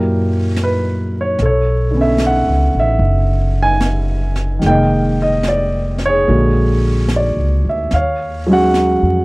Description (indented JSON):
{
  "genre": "jazz ballad",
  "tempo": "73 BPM",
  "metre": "4/4",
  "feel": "swing 68% on 8ths",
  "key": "unclear",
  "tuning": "A4 = 440 Hz",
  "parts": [
    { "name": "warm grand piano", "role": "accompaniment", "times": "0.0-9.2 s", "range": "A#2 to G#5", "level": "-15 LUFS", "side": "equal", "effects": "none" },
    { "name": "upright bass", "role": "bass", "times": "0.0-9.2 s", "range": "F1 to F#2", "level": "-16 LUFS", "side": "equal", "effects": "none" },
    { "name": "jazz brush drum kit", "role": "drums", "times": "0.6-9.2 s", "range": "brushed snare drum, hi-hat, snare drum", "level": "-26 LUFS", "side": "equal", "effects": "none" }
  ],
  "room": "little or no reverb",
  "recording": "dry, close 1970s-style studio recording, vinyl crackle",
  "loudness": "-13 LUFS",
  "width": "side -24 dB against mid",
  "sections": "0.0-9.2 A section",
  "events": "none",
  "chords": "0.0 F#7b9; 1.4 Bm9; 4.6 Fm11; 6.3 A#7alt; 7.9 D#m11",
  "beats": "0.58 | 1.39 2.20 3.01 3.83 | 4.64 5.46 6.28 7.10 | 7.92 8.75"
}